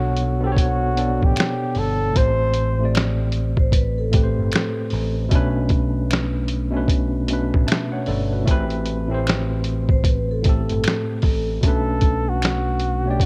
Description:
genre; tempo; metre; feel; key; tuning
lo-fi hip hop; 76 BPM; 4/4; swing 64% on 16ths; B phrygian; A4 = 440 Hz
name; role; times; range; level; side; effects
breathy flugelhorn; melody; 0.0-3.0, 11.7-13.3 s; F#4 to C5; -27 LUFS; equal; analog delay
tine electric piano; accompaniment; 0.0-13.3 s; A2 to A5; -26 LUFS; equal; none
picked electric bass; bass; 0.0-13.3 s; G1 to B1; -26 LUFS; equal; none
lo-fi sampler-style drum kit; drums; 0.2-13.3 s; finger snaps, hi-hat, kick drum, snare drum; -22 LUFS; equal; vintage 12-bit sampler grit
finger snap; percussion; 1.4-12.7 s; none; -38 LUFS; equal; none
vibraphone with soft mallets; second line; 3.6-5.1, 9.9-11.5 s; A4 to C5; -31 LUFS; equal; analog delay
room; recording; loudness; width
light reverb, small room ambience; none; -20 LUFS; mono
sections
0.0-13.3 A section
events
none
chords
0.0 Bm9; 2.2 Am9; 5.3 Bm9; 8.5 Am9; 11.6 Bm9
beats
0.58 1.37 | 2.16 2.95 3.74 4.53 | 5.32 6.11 6.90 7.68 | 8.47 9.26 10.05 10.84 | 11.63 12.42 13.21

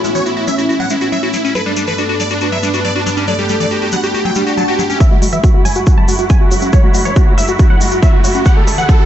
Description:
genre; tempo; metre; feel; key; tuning
uplifting trance; 139 BPM; 4/4; straight; F# minor; A4 = 440 Hz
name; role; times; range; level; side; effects
supersaw chords; melody; 0.0-9.1 s; D4 to A5; -18 LUFS; right 1 dB; cassette tape, sidechain pumping, low-pass filter, digital delay
warm velvety synth lead; second line; 0.0-4.9 s; C#4 to B4; -20 LUFS; left 1 dB; chorus, tape echo
muted studio string section; sustained chords; 0.0-9.1 s; D2 to E4; -21 LUFS; right 1 dB; sidechain pumping
liquid acid bass; arpeggios; 0.0-9.1 s; E3 to F#4; -21 LUFS; left 4 dB; phaser, sidechain pumping, tape echo
tube shaker; percussion; 0.0-9.0 s; none; -27 LUFS; left 1 dB; none
swell and riser; sound effects; 4.3-9.1 s; none; -24 LUFS; right 2 dB; none
wide unison pluck; second line; 5.0-9.1 s; F#4 to A5; -24 LUFS; right 2 dB; sidechain pumping, tape echo
electronic hi-hat; drums; 5.0-9.0 s; none; -25 LUFS; right 1 dB; sidechain pumping on hats
electronic kick drum; drums; 5.0-9.0 s; none; -10 LUFS; equal; none
room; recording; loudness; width
digital ambience; nothing above 8.0 kHz; -11 LUFS; side -11 dB against mid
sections
0.0-5.0 A section; 5.0-9.1 B section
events
swell 4.3-5.0; build-up 5.0-9.1; riser 5.0-9.1; filter sweep on supersaw synth 5.0-9.1; filter sweep on acid bass 5.0-9.1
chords
0.0 A; 1.6 Gadd9; 5.0 F#m7; 8.5 Dadd9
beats
0.26 0.69 1.12 | 1.55 1.98 2.42 2.85 | 3.28 3.71 4.14 4.57 | 5.00 5.44 5.87 6.30 | 6.73 7.16 7.59 8.03 | 8.46 8.89

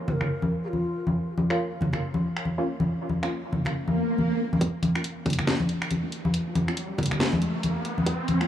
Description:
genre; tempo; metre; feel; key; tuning
deep dubstep; 139 BPM; 4/4; swing 59% on 16ths, half-time; Bb minor; A4 = 438 Hz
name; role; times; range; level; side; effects
breathy mellow long shakuhachi; melody; 0.1-1.1 s; F4 to C5; -36 LUFS; left 1 dB; dub echo
congas; percussion; 0.1-8.4 s; none; -26 LUFS; left 1 dB; dub echo
garage drum kit; drums; 0.2-8.5 s; finger snaps, hi-hat, snare drum; -30 LUFS; equal; low-pass filter on hats, low-pass filter on snare
filtered dub chord stab; stabs; 1.5-8.5 s; Bb3 to F4; -34 LUFS; right 1 dB; chorus, dub echo
swell and riser; sound effects; 3.8-8.5 s; none; -31 LUFS; equal; none
electronic kick drum; drums; 4.6-8.2 s; none; -29 LUFS; right 1 dB; high-pass filter on kick
room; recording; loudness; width
light reverb; none; -24 LUFS; side -10 dB against mid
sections
0.0-4.6 A section; 4.6-8.5 B section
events
swell 3.8-4.6; build-up 4.6-8.5; riser 4.6-8.5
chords
0.0 Bbm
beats
0.29 0.73 | 1.16 1.59 2.02 2.45 | 2.88 3.32 3.75 4.18 | 4.61 5.04 5.47 5.91 | 6.34 6.77 7.20 7.63 | 8.06

